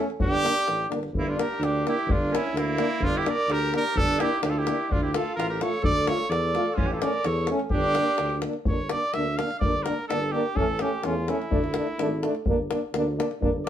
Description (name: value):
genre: balkan folk, Balkan brass band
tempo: 127 BPM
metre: 2/4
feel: straight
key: G dorian sharp4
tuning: A4 = 440 Hz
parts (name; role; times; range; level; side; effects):
- clear French horn; accompaniment; 0.0-13.7 s; C#4 to F4; -32 LUFS; left 4 dB; none
- warm euphonium; accompaniment; 0.0-13.7 s; A3 to Bb3; -31 LUFS; right 3 dB; none
- davul; percussion; 0.1-13.7 s; none; -29 LUFS; left 2 dB; none
- warm trumpet; melody; 0.2-13.7 s; E4 to F5; -28 LUFS; right 1 dB; none
- clear alto saxophone; second line; 0.2-8.4 s; Bb3 to Bb4; -30 LUFS; right 2 dB; none
- mellow tuba; bass; 0.2-13.7 s; G1 to E2; -30 LUFS; equal; none
room: wet studio reverb, RT60 0.6 s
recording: band playing live in one room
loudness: -23 LUFS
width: side -10 dB against mid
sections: 0.0-1.1 A section; 1.1-8.7 A section; 8.7-13.7 B section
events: trumpet solo 8.7-13.7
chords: 0.2 Gm; 4.9 Dm; 6.8 A; 7.7 Gm; 10.6 A; 11.5 D5; 12.5 Gm